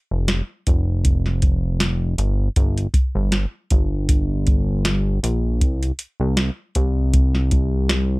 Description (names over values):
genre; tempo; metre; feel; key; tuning
indie pop, bedroom pop; 79 BPM; 4/4; swing 55% on 16ths; unclear; A4 = 440 Hz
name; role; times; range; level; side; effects
chorused synth bass; bass; 0.1-8.2 s; F1 to C2; -20 LUFS; equal; none
soft vintage rhythm box; drums; 0.3-8.1 s; hi-hat, kick drum, snare drum; -19 LUFS; equal; none
room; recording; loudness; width
little or no reverb; none; -18 LUFS; side -23 dB against mid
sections
0.0-8.2 A section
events
none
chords
none